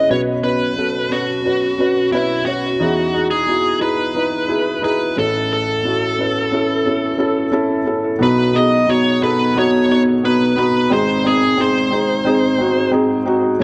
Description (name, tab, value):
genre	pop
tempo	89 BPM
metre	4/4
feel	straight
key	unclear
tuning	A4 = 441 Hz
part	smooth overdriven lead guitar	melody	0.0-12.9 s	E4 to D#5	-21 LUFS	equal	analog delay
part	felt-muted upright piano	accompaniment	0.0-13.6 s	G#1 to C#5	-19 LUFS	equal	analog delay
room	moderate spring reverb, RT60 2.1 s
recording	echo-heavy mix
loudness	-17 LUFS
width	mono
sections	0.0-8.2 A section; 8.2-13.6 B section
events	none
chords	0.1 Bsus2; 2.8 Emaj7; 5.2 A; 8.2 B; 10.9 G#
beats	| 0.10 0.78 1.46 2.13 | 2.81 3.49 4.16 4.84 | 5.51 6.19 6.87 7.54 | 8.22 8.89 9.57 10.24 | 10.91 11.59 12.26 12.94 | 13.61